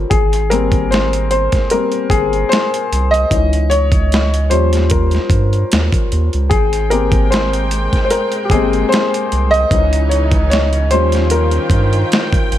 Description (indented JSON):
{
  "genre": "R&B, neo-soul",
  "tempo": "75 BPM",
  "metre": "4/4",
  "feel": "swing 54% on 16ths",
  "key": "Ab major",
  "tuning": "A4 = 443 Hz",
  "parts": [
    { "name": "warm upright piano", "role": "accompaniment", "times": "0.0-12.6 s", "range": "Fb3 to Eb5", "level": "-16 LUFS", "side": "left 2 dB", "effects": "none" },
    { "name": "round analog bass", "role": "bass", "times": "0.0-12.6 s", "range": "G1 to G2", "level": "-16 LUFS", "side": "right 1 dB", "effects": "none" },
    { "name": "dusty soul sampler-style drum kit", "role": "drums", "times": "0.1-12.6 s", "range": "hi-hat, kick drum, snare drum", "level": "-17 LUFS", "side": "equal", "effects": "overdrive" },
    { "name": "rich studio string section", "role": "sustained chords", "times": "6.5-12.6 s", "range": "Db3 to G5", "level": "-24 LUFS", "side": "right 1 dB", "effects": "none" }
  ],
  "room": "small room ambience",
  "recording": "none",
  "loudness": "-12 LUFS",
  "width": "side -12 dB against mid",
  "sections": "0.0-12.6 A section",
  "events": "upright piano solo 0.0-12.6",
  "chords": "0.1 Abmaj9; 3.3 Dbmadd9; 4.5 Eb9; 6.5 Abmaj9; 9.7 Dbmadd9; 10.9 Eb9"
}